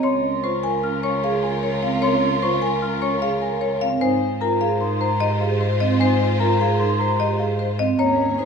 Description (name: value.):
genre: classical, minimalist pattern music.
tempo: 151 BPM.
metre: 5/4.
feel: straight.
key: Ab major.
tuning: A4 = 438 Hz.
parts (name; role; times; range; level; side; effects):
marimba with medium hard mallets; melody; 0.0-8.5 s; Bb4 to Ab5; -24 LUFS; left 5 dB; none.
warm studio string section; sustained chords; 0.0-8.5 s; F4 to Db5; -29 LUFS; left 2 dB; none.
large celesta; arpeggios; 0.0-8.2 s; F5 to F6; -26 LUFS; left 2 dB; none.
vibraphone with soft mallets; arpeggios; 0.0-8.5 s; C4 to Bb4; -24 LUFS; right 6 dB; none.
rich cello; bass; 0.0-8.5 s; Db2 to Ab2; -25 LUFS; right 2 dB; none.
room: wet recital hall reverb, RT60 1.6 s.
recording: heard from further back in the room.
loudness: -18 LUFS.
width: side -6 dB against mid.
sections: 0.0-8.5 A section.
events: none.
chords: 0.0 Db6; 4.0 Ab69.